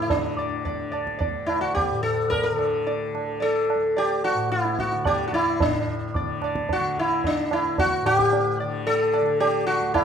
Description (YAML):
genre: indian classical, Hindustani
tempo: 110 BPM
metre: 5/4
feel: straight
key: D major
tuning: A4 = 440 Hz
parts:
  - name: sitar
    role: melody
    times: 0.0-10.0 s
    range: D4 to D5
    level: -22 LUFS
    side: left 1 dB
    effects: none
  - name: tanpura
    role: drone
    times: 0.0-10.0 s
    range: D2 to D3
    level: -32 LUFS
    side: left 2 dB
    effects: none
  - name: tabla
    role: percussion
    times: 0.1-10.0 s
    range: none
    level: -28 LUFS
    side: right 5 dB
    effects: none
room: moderate recital hall reverb, RT60 1.3 s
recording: minimal, uncompressed stereo recording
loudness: -21 LUFS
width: side -7 dB against mid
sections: 0.0-5.6 A section; 5.6-10.0 B section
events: speeding up 0.0-10.0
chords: none